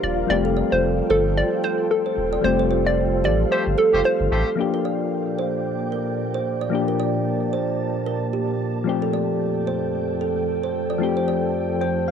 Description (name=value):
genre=afrobeats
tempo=112 BPM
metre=4/4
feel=swing 58% on 16ths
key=Bb major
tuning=A4 = 440 Hz
part: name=hollow square pluck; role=melody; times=0.0-4.4 s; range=A4 to D5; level=-22 LUFS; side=equal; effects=chorus, cassette tape
part: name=soft electric-piano-like synth keys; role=accompaniment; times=0.0-12.1 s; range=F3 to G5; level=-25 LUFS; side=left 9 dB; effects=chorus
part: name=glassy FM pad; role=sustained chords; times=0.0-12.1 s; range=F2 to A5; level=-27 LUFS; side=equal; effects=ensemble chorus, built-in reverb
part: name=warm sub bass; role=bass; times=0.0-4.4 s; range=Eb1 to A1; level=-24 LUFS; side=equal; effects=none
part: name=kalimba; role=riff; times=0.5-11.9 s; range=G4 to D5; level=-26 LUFS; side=right 9 dB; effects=analog delay
part: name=clear horn section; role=second line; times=3.5-4.5 s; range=A3 to C5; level=-27 LUFS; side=left 1 dB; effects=none
room=light reverb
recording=home recording on cassette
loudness=-19 LUFS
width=side -7 dB against mid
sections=0.0-4.6 A section; 4.6-12.1 B section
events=band accent 2.4-4.6; synth keys fill 11.5-12.1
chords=0.3 Fadd9; 4.6 Bb6; 8.9 Fadd9